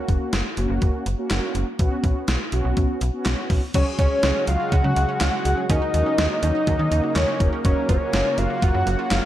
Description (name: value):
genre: synth-pop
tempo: 123 BPM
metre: 4/4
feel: straight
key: F# major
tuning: A4 = 440 Hz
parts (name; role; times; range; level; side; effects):
- mellow synth brass; accompaniment; 0.0-8.4 s; A#3 to A#4; -28 LUFS; right 1 dB; chorus
- slap-like FM bass; bass; 0.1-9.2 s; E#1 to D#3; -23 LUFS; equal; none
- gated 80s digital drum machine; drums; 0.1-9.2 s; crash cymbal, handclaps, hi-hat, kick drum, snare drum; -23 LUFS; equal; gated reverb, gated reverb snare
- fat analog lead; melody; 3.7-9.3 s; C#5 to F#5; -24 LUFS; left 1 dB; digital delay
- lush unison pad; sustained chords; 4.1-9.3 s; C#3 to F#4; -28 LUFS; equal; chorus
- analog pluck; arpeggios; 3.7-9.2 s; F#3 to E#4; -31 LUFS; right 8 dB; chorus, digital delay
room: light reverb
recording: dark, warm production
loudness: -19 LUFS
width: side -13 dB against mid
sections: 0.0-3.7 A section; 3.7-9.3 B section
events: none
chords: 0.0 F#; 1.8 Bsus2; 3.7 C#sus4; 5.7 D#m7; 7.6 F#maj7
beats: 0.33 0.82 1.31 | 1.79 2.28 2.77 3.26 | 3.75 4.23 4.72 5.21 | 5.70 6.18 6.67 7.16 | 7.65 8.13 8.62 9.11